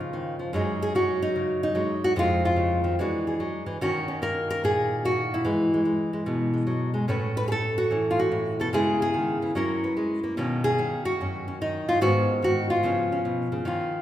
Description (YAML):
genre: solo jazz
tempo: 146 BPM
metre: 4/4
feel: swing 67% on 8ths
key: F# major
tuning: A4 = 440 Hz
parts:
  - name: nylon-string guitar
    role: solo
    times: 0.0-14.0 s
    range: F2 to B4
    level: -23 LUFS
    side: equal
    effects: none
room: wet recital hall reverb, RT60 1.7 s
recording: recorded in a church or concert hall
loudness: -23 LUFS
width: side -12 dB against mid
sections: 0.5-13.6 A section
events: none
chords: 0.0 Db69; 0.5 F#sus2; 2.2 Fm7; 3.0 E9; 3.8 D#m7; 5.4 Eadd9; 7.1 A69; 8.7 C#m7; 9.5 F#9; 10.4 Bmaj9; 12.0 G#m7; 12.8 C#7